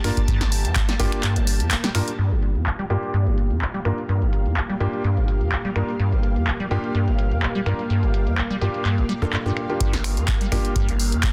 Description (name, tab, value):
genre	acid house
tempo	126 BPM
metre	4/4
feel	swing 54% on 16ths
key	G minor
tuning	A4 = 442 Hz
part	string machine, full ensemble	sustained chords	0.0-11.3 s	Bb3 to A5	-32 LUFS	equal	ensemble chorus, vintage 12-bit sampler grit, sidechain pumping
part	acid bass, square	riff	0.0-11.3 s	G1 to G3	-24 LUFS	equal	tube saturation, lush chorus
part	warm concert grand piano	stabs	0.0-10.7 s	Bb3 to Bb4	-32 LUFS	equal	low-pass filter, analog delay
part	punchy analog drum machine	drums	0.0-11.3 s	finger snaps, handclaps, hi-hat, snare drum	-30 LUFS	equal	low-pass filter on hats, soft clipping on snare, low-pass filter on snare
part	electronic kick drum	drums	0.2-1.1, 9.8-11.3 s	none	-25 LUFS	equal	none
room	light reverb, digital ambience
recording	dense, heavily limited modern master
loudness	-22 LUFS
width	mono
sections	0.0-2.2 A section; 2.2-9.8 B section; 9.8-11.3 A section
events	drop 0.0-2.2, 9.8-11.3; kick drops out 1.2-2.2; filter sweep on string machine 2.2-9.8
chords	0.0 Gm7